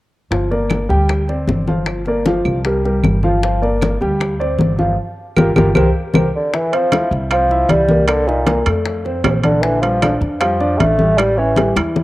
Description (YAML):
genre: Afro-Cuban jazz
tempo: 155 BPM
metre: 4/4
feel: straight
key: F major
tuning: A4 = 440 Hz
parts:
  - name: warm baby grand piano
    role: accompaniment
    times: 0.3-12.0 s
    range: D3 to G5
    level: -19 LUFS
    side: equal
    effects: cassette tape
  - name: upright bass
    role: bass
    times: 0.3-12.0 s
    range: G1 to F2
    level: -19 LUFS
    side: equal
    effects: none
  - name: bongos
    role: percussion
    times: 0.3-12.0 s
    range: none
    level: -22 LUFS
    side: left 4 dB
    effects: none
  - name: congas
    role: percussion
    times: 0.3-12.0 s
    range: none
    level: -19 LUFS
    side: left 1 dB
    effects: none
  - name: claves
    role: percussion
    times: 0.7-12.0 s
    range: none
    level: -29 LUFS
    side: right 5 dB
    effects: none
  - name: warm bassoon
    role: melody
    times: 6.4-11.8 s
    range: Bb2 to A3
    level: -17 LUFS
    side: right 1 dB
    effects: cassette tape
  - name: timbales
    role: percussion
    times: 6.7-12.0 s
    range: none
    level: -24 LUFS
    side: right 5 dB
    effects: none
room: moderate spring reverb, RT60 2.4 s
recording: home recording on cassette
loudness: -13 LUFS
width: side -17 dB against mid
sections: 0.3-6.5 A section; 6.5-12.0 B section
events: band accent 5.0-6.5; drum fill 11.2-12.0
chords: 0.3 Gm7; 1.1 D7sus4; 1.9 Gm7; 2.6 C5; 3.4 Gm7; 4.2 D7sus4; 5.0 Gm7; 5.8 C5; 6.5 Fsus2; 8.1 Cm7; 8.9 F; 9.6 Bb6; 11.2 A7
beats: | 0.32 0.70 1.09 1.48 | 1.87 2.26 2.65 3.04 | 3.42 3.81 4.20 4.59 | 4.98 5.37 5.75 6.14 | 6.53 6.92 7.31 7.69 | 8.08 8.47 8.86 9.24 | 9.63 10.02 10.41 10.80 | 11.19 11.57 11.96